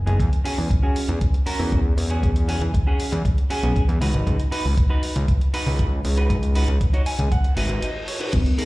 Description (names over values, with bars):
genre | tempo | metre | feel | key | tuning
nu-disco, nu disco | 118 BPM | 4/4 | straight | unclear | A4 = 440 Hz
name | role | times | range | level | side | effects
fat analog bass | bass | 0.0-8.4 s | F#1 to E2 | -21 LUFS | equal | none
clean electric guitar | riff | 0.1-8.7 s | B3 to G#5 | -28 LUFS | right 1 dB | lush chorus, low-pass filter, dub echo
dusty soul sampler-style drum kit | drums | 0.1-8.7 s | crash cymbal, hi-hat | -35 LUFS | equal | none
electronic kick drum | drums | 0.2-8.4 s | none | -20 LUFS | equal | none
reverse cymbal | sound effects | 7.5-8.3 s | none | -33 LUFS | left 1 dB | none
congas | percussion | 8.3-8.4 s | none | -26 LUFS | left 2 dB | none
room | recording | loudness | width
digital ambience | played on a big sound system in a bare room, large studio reverb | -19 LUFS | side -19 dB against mid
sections
0.0-8.7 A section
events
filter sweep on clean electric guitar 0.0-8.7; clean electric guitar fill 6.8-8.3; reverse cymbal 7.5-8.3; break 7.8-8.3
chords
0.2 E69; 4.0 C#9sus4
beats
| 0.20 0.71 1.22 1.73 | 2.23 2.74 3.25 3.76 | 4.27 4.78 5.28 5.79 | 6.30 6.81 7.32 7.83 | 8.34